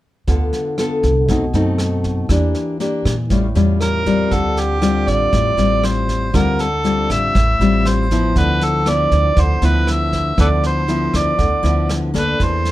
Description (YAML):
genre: bossa nova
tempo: 119 BPM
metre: 4/4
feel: straight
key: D dorian, D minor from 4.3 s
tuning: A4 = 442 Hz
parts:
  - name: nylon-string guitar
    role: accompaniment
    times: 0.3-12.7 s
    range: A2 to A4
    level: -19 LUFS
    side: left 3 dB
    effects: none
  - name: upright bass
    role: bass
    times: 0.3-12.7 s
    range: A1 to Bb2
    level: -18 LUFS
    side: right 1 dB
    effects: none
  - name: vintage brush drum kit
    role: drums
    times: 0.3-12.7 s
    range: kick drum, rim click, snare drum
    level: -23 LUFS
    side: right 1 dB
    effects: none
  - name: overdriven harmonica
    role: melody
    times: 3.8-12.7 s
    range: G4 to E5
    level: -19 LUFS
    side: right 1 dB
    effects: none
room: light reverb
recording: none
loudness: -14 LUFS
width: side -15 dB against mid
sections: 0.3-4.3 A section; 4.3-12.7 B section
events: none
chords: 0.3 Dm6; 1.3 B7b9; 2.3 Em7b5; 3.3 A7b13; 4.3 Dm11; 8.4 Dm69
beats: | 0.28 0.78 1.29 1.79 | 2.30 2.80 3.31 3.81 | 4.32 4.82 5.33 5.83 | 6.34 6.84 7.35 7.85 | 8.36 8.86 9.37 9.87 | 10.38 10.88 11.39 11.89 | 12.40